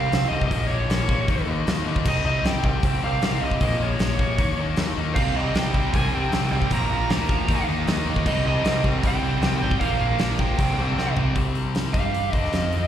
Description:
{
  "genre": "hard rock",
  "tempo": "155 BPM",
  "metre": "4/4",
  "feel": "straight",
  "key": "C phrygian",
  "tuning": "A4 = 440 Hz",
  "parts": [
    { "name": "smooth overdriven lead guitar", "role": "melody", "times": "0.0-12.9 s", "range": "Db5 to Bb5", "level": "-27 LUFS", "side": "right 2 dB", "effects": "slapback echo" },
    { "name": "distorted electric guitar", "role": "riff", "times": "0.0-12.9 s", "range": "Bb2 to G4", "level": "-28 LUFS", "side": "left 11 dB", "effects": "distortion, slapback echo" },
    { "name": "growling fingered electric bass", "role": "bass", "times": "0.0-12.9 s", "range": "Ab1 to G2", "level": "-25 LUFS", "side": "equal", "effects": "overdrive" },
    { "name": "huge arena drum kit", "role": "drums", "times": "0.1-12.8 s", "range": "crash cymbal, hi-hat, kick drum, snare drum, toms", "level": "-25 LUFS", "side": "equal", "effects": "none" },
    { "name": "cranked stack guitar", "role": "riff", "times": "5.2-11.4 s", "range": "Bb2 to Eb4", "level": "-29 LUFS", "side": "right 11 dB", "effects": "overdrive, slapback echo" }
  ],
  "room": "small room reverb",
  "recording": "live gig heard through the venue's PA, recital hall reverb",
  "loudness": "-20 LUFS",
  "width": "side -10 dB against mid",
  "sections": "0.0-11.4 A section; 11.4-12.9 B section",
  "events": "drum fill 11.0-11.4; lead electric guitar solo 11.4-12.9",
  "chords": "0.0 C5; 0.5 Bbm; 1.3 Eb5; 2.1 C5; 3.6 Bbm; 4.4 Eb5; 5.2 C5; 6.7 Bb5; 7.5 Eb5; 8.3 Cm; 9.8 Bb5; 10.6 C5; 11.9 G5; 12.3 D5"
}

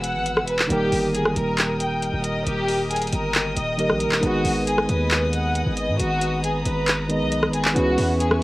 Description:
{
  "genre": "hip hop, trap",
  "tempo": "136 BPM",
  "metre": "4/4",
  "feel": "half-time",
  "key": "G# minor",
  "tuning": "A4 = 441 Hz",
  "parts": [
    { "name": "warm studio violin section", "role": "melody", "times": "0.0-8.4 s", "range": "F#4 to G5", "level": "-26 LUFS", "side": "equal", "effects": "none" },
    { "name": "barky tine electric piano", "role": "accompaniment", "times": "0.0-8.4 s", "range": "D#3 to B4", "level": "-24 LUFS", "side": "right 1 dB", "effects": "overdrive" },
    { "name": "warm studio string section", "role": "sustained chords", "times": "0.0-8.4 s", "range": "A#4 to E6", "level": "-31 LUFS", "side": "left 1 dB", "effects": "none" },
    { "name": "hard-hitting 808-style bass", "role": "bass", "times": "0.0-8.4 s", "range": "D#1 to G#2", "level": "-27 LUFS", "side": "equal", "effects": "none" },
    { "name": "trap drum kit", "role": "drums", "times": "0.0-8.4 s", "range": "handclaps, hi-hat, rim click", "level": "-24 LUFS", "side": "equal", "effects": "cassette tape" }
  ],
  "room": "light reverb",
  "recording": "home recording on cassette, vinyl crackle",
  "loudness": "-19 LUFS",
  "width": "side -18 dB against mid",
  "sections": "0.0-8.4 A section",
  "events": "none",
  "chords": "0.0 Eadd9; 0.7 D#; 4.2 G#m; 7.8 C#m7"
}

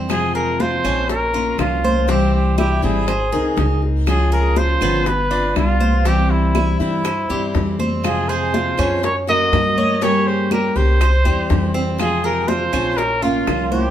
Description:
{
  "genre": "latin, Cuban son and guajira",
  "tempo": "121 BPM",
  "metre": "4/4",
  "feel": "straight",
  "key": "F harmonic minor",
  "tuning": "A4 = 440 Hz",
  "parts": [
    { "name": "picked steel-string acoustic guitar", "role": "accompaniment", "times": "0.0-13.9 s", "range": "C3 to Bb4", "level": "-22 LUFS", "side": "left 2 dB", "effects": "none" },
    { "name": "Cuban tres", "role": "arpeggios", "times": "0.0-13.9 s", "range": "B3 to Db5", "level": "-25 LUFS", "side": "right 2 dB", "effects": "none" },
    { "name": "upright bass", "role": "bass", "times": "0.0-13.9 s", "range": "G1 to G2", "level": "-20 LUFS", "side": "equal", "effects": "none" },
    { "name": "breathy trumpet", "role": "melody", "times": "0.1-13.9 s", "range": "E4 to Eb5", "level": "-21 LUFS", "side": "equal", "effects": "none" },
    { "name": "bongos", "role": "percussion", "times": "0.1-13.7 s", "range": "none", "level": "-27 LUFS", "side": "left 5 dB", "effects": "none" },
    { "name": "claves", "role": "percussion", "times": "0.1-13.7 s", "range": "none", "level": "-31 LUFS", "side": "right 7 dB", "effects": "none" },
    { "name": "congas", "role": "percussion", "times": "0.1-13.9 s", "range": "none", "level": "-28 LUFS", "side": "equal", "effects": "none" },
    { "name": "nylon-string guitar", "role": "second line", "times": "8.0-13.9 s", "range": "Db4 to Bb4", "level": "-26 LUFS", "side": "right 6 dB", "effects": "none" }
  ],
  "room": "moderate large studio reverb, RT60 0.9 s",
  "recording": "band playing live in one room",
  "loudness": "-15 LUFS",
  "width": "side -10 dB against mid",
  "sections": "0.1-13.9 A section",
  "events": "none",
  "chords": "0.1 Fm; 1.1 Bbm; 2.1 C; 3.1 Abadd9; 4.1 Db; 5.1 G7; 6.1 C; 8.0 Fm; 9.0 Gb; 10.0 Gdim; 11.0 C; 12.0 Fm; 13.0 Bbm"
}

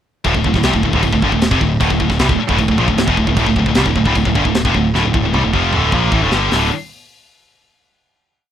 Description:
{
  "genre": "heavy metal",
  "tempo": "153 BPM",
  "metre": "4/4",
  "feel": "straight",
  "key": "D minor",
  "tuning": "A4 = 439 Hz",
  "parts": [
    { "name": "heavy high-gain guitar", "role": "riff", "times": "0.2-6.7 s", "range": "D2 to Bb3", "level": "-18 LUFS", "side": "left 8 dB", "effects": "distortion" },
    { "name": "growling picked electric bass", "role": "bass", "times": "0.2-6.7 s", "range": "D1 to C2", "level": "-19 LUFS", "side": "equal", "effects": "overdrive" },
    { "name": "tight metal drum kit", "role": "drums", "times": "0.2-6.6 s", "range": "crash cymbal, hi-hat, kick drum, snare drum, toms", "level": "-19 LUFS", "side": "equal", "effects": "none" },
    { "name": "tight distorted guitar", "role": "riff", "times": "0.3-6.7 s", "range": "D2 to Bb3", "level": "-20 LUFS", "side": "right 10 dB", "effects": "distortion" },
    { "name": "tight distorted guitar", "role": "riff", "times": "0.3-6.7 s", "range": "D2 to Bb3", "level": "-22 LUFS", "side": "right 1 dB", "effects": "distortion" }
  ],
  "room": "little or no reverb",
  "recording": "rough home demo mix",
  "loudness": "-13 LUFS",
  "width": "side -10 dB against mid",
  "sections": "0.2-6.5 riff; 6.5-8.1 final chord",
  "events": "drum fill 4.9-6.5",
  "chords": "0.2 Dm; 6.5 D5"
}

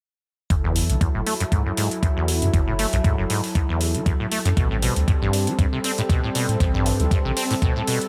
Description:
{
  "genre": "acid house",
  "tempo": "118 BPM",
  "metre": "4/4",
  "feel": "swing 55% on 16ths",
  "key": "unclear",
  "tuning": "A4 = 440 Hz",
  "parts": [
    { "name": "warm analog pad", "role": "sustained chords", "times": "0.5-8.1 s", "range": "F#3 to A4", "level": "-30 LUFS", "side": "equal", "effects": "chorus, sidechain pumping" },
    { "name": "acid bass, saw", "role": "riff", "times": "0.5-8.0 s", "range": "E2 to C4", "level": "-27 LUFS", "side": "equal", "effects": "lush chorus, sidechain pumping, digital delay" },
    { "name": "saturated sub bass", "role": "bass", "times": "0.5-7.3 s", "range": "F#1 to A2", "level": "-26 LUFS", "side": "equal", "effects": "sidechain pumping" },
    { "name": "electronic hi-hat", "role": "drums", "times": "0.5-8.1 s", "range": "none", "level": "-30 LUFS", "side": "equal", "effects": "none" },
    { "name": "electronic kick drum", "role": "drums", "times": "0.5-7.7 s", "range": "none", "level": "-22 LUFS", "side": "equal", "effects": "none" },
    { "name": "warbly tape-like pad", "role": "texture", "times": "2.9-8.1 s", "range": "F#4 to B5", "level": "-45 LUFS", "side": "equal", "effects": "none" }
  ],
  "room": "light reverb",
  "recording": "bright 1980s-style digital production",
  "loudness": "-22 LUFS",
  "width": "mono",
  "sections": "0.5-8.1 A section",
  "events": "none",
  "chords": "0.5 F#m7; 4.6 Am7"
}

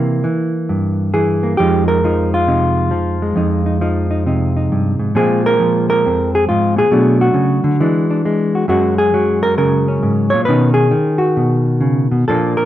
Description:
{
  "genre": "solo jazz",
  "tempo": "135 BPM",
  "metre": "4/4",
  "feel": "swing 66% on 8ths, rubato",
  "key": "F minor",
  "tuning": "A4 = 440 Hz",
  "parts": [
    { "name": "hollow-body jazz guitar", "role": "solo", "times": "0.0-12.7 s", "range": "F2 to Db5", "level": "-13 LUFS", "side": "equal", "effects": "none" }
  ],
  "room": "moderate studio reverb, RT60 0.7 s",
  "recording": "minimal, uncompressed stereo recording",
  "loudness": "-13 LUFS",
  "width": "side -12 dB against mid",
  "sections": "0.0-5.2 A section; 5.2-12.7 B section",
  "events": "none",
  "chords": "0.0 C7; 1.6 Fm11; 5.2 Bbsus2; 6.9 Bm7; 7.8 E9; 8.7 Gbadd9; 10.5 Badd9"
}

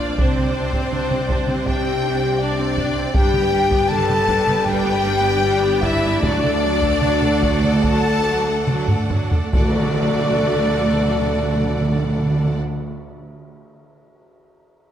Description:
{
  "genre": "cinematic, epic orchestral film score",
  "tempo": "69-81 BPM",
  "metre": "4/4",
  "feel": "straight",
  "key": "D mixolydian",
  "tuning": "A4 = 440 Hz",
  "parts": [
    { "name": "bright symphonic violin section", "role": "melody", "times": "0.0-12.6 s", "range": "C5 to A5", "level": "-31 LUFS", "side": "left 3 dB", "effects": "none" },
    { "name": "clear symphonic violin section", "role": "second line", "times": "0.0-12.6 s", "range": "C5 to A5", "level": "-29 LUFS", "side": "left 3 dB", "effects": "none" },
    { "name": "mellow hollow concert flute", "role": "second line", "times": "0.0-12.6 s", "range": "A4 to A5", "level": "-26 LUFS", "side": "left 1 dB", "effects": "none" },
    { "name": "clear symphonic viola section", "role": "accompaniment", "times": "0.0-12.6 s", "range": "F#3 to A4", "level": "-28 LUFS", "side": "right 3 dB", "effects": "none" },
    { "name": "mellow French horn section", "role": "sustained chords", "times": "0.0-12.6 s", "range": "C4 to D5", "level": "-22 LUFS", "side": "left 4 dB", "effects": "none" },
    { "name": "rich symphonic string section", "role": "sustained chords", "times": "0.0-12.6 s", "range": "D4 to G5", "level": "-28 LUFS", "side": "equal", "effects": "none" },
    { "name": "rich symphonic cello section", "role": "bass", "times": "0.0-12.6 s", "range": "D2 to C3", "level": "-25 LUFS", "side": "right 2 dB", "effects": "none" },
    { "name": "rich symphonic double bass section", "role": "bass", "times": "0.0-12.6 s", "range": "G1 to D2", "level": "-28 LUFS", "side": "right 2 dB", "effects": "none" },
    { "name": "taiko ensemble", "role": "drums", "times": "0.2-11.2 s", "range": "none", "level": "-22 LUFS", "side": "equal", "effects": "none" },
    { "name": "timpani", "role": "percussion", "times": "6.2-12.6 s", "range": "D3", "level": "-23 LUFS", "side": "right 2 dB", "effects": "none" },
    { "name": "tam-tam", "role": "percussion", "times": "9.6-12.6 s", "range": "none", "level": "-32 LUFS", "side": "equal", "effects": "none" }
  ],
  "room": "wet concert hall reverb, RT60 2.1 s",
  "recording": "none",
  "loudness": "-16 LUFS",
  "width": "side -10 dB against mid",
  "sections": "0.0-9.5 A section; 9.5-13.0 B section",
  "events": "slowing down 1.7-9.5; drum fill 8.7-9.5; band accent 9.5-10.4",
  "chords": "0.2 Csus2; 3.2 G; 6.2 D"
}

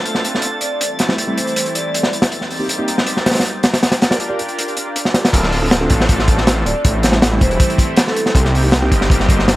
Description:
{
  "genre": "drum and bass, jungle",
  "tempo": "159 BPM",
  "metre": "4/4",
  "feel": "straight",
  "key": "D minor",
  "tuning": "A4 = 439 Hz",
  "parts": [
    { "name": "lush unison pad", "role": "sustained chords", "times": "0.0-9.6 s", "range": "E3 to D5", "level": "-22 LUFS", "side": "equal", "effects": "chorus" },
    { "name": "drifting glass-harmonics texture", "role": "texture", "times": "0.0-5.3 s", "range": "A6", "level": "-30 LUFS", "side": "right 2 dB", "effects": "chorus, built-in reverb" },
    { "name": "crunchy breakbeat drum kit", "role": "drums", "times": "0.1-9.6 s", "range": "crash cymbal, hi-hat, kick drum, snare drum", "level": "-15 LUFS", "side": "equal", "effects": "none" },
    { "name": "vibraphone with medium mallets", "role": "melody", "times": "0.6-2.1, 6.7-8.3 s", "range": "A4 to D5", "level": "-24 LUFS", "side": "right 1 dB", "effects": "vintage 12-bit sampler grit, dub echo" },
    { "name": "mellow tine electric piano", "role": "stabs", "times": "1.1-8.9 s", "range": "G3 to D5", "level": "-25 LUFS", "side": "right 1 dB", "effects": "none" },
    { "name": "detuned saw bass", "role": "bass", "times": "5.3-9.6 s", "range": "D1 to C2", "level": "-17 LUFS", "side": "equal", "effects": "none" }
  ],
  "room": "studio ambience",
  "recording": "vinyl crackle",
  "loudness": "-13 LUFS",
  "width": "side -17 dB against mid",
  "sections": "0.0-5.3 A section; 5.3-9.6 B section",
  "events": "drop 5.3-9.6",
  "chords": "0.0 Dm7; 0.8 Am7; 2.3 Cm7; 3.8 Gm7; 5.3 Dm7; 6.8 Am7; 8.4 Cm7"
}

